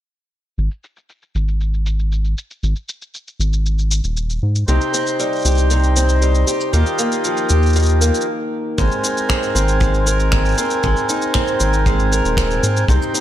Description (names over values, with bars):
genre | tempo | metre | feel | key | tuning
folktronica | 117 BPM | 4/4 | straight | Ab major | A4 = 442 Hz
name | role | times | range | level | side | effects
round analog bass | bass | 0.6-13.0 s | Eb1 to Ab2 | -16 LUFS | equal | tube saturation
electronic shaker and finger snaps | drums | 0.6-13.2 s | none | -24 LUFS | equal | overdrive, low-pass filter on perc, low-pass filter on snare
hand-pumped harmonium | sustained chords | 4.7-13.2 s | C4 to Ab5 | -22 LUFS | right 1 dB | none
picked old ladder-braced acoustic guitar | arpeggios | 4.7-13.2 s | C3 to Bb4 | -20 LUFS | equal | tape echo
kick drum | drums | 8.8-13.0 s | none | -22 LUFS | equal | none
room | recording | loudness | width
small room ambience | none | -15 LUFS | side -12 dB against mid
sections
0.6-8.8 A section; 8.8-13.2 B section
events
stop 8.3-8.8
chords
0.6 Ab5; 4.7 Cm; 6.7 Ebadd9; 8.8 Abadd9